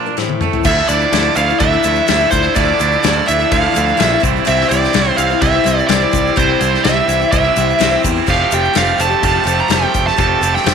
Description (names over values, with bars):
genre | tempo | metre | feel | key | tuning
folk rock and heartland rock | 126 BPM | 4/4 | straight | D minor | A4 = 440 Hz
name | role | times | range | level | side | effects
picked steel-string acoustic guitar | accompaniment | 0.0-10.7 s | A2 to C5 | -20 LUFS | left 14 dB | none
electric guitar at the edge of break-up | riff | 0.0-10.7 s | A2 to G4 | -17 LUFS | right 14 dB | none
unplugged drum kit | drums | 0.2-10.7 s | crash cymbal, kick drum, ride cymbal, snare drum, toms | -19 LUFS | left 4 dB | none
tube shaker | percussion | 0.6-10.7 s | none | -30 LUFS | left 16 dB | none
bluesy overdriven lead guitar | melody | 0.7-10.7 s | C5 to Bb5 | -16 LUFS | right 2 dB | distortion
picked electric bass | bass | 0.7-10.7 s | F1 to E2 | -20 LUFS | equal | none
room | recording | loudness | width
moderate spring reverb, RT60 1.6 s | 1960s-style stereo with parts hard left and right | -11 LUFS | side -6 dB against mid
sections
0.7-10.7 A section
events
break 0.0-0.7; drum fill 0.2-0.7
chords
0.2 Am; 0.7 Dmadd9; 4.2 C; 8.3 Fadd9